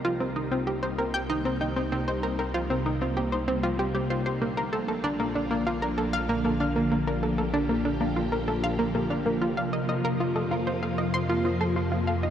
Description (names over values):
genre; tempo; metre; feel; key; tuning
ambient, sequencer-driven space music; 96 BPM; 4/4; straight; C minor; A4 = 439 Hz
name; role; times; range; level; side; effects
phased string machine; sustained chords; 0.0-12.3 s; C3 to G4; -29 LUFS; equal; ensemble chorus, phaser
analog pluck; riff; 0.0-12.3 s; Bb3 to C6; -27 LUFS; equal; chorus, tape echo, shimmer reverb
analog drone; bass; 0.1-12.3 s; Bb1 to F2; -34 LUFS; equal; chorus
room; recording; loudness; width
wet huge ambient reverb, RT60 7.9 s; dark, warm production; -25 LUFS; side -9 dB against mid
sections
0.0-12.3 A section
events
fade-in on string machine 0.0-12.3; fade-in on synth drone 0.0-12.3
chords
0.0 Cm7; 4.4 Bb; 9.4 Fsus4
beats
0.04 0.67 1.29 | 1.92 2.54 3.17 3.79 | 4.42 5.04 5.67 6.29 | 6.92 7.54 8.17 8.79 | 9.42 10.04 10.67 11.29 | 11.92